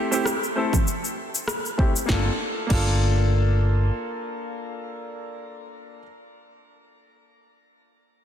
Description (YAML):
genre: sunset chillout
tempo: 98 BPM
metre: 4/4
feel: swing 55% on 16ths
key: G dorian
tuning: A4 = 440 Hz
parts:
  - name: bright grand piano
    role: accompaniment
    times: 0.0-6.0 s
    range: A3 to A4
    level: -27 LUFS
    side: left 1 dB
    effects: auto-pan, low-pass filter, tape echo, shimmer reverb
  - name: deep house drum kit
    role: drums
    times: 0.1-2.9 s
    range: congas, crash cymbal, rim click, shaker, snare drum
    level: -28 LUFS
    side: equal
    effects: overdrive
  - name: electronic kick drum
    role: drums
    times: 0.7-2.9 s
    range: none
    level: -23 LUFS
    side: equal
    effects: overdrive
  - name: hollow-body short-scale fingered electric bass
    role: bass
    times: 2.1-3.9 s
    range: G1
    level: -20 LUFS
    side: equal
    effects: none
room: moderate lush hall reverb, RT60 2.7 s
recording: dense, heavily limited modern master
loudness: -21 LUFS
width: side -9 dB against mid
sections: 0.0-2.1 A section; 2.1-4.5 B section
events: filter sweep on grand piano 0.0-2.1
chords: 0.0 Am7; 2.1 Gm7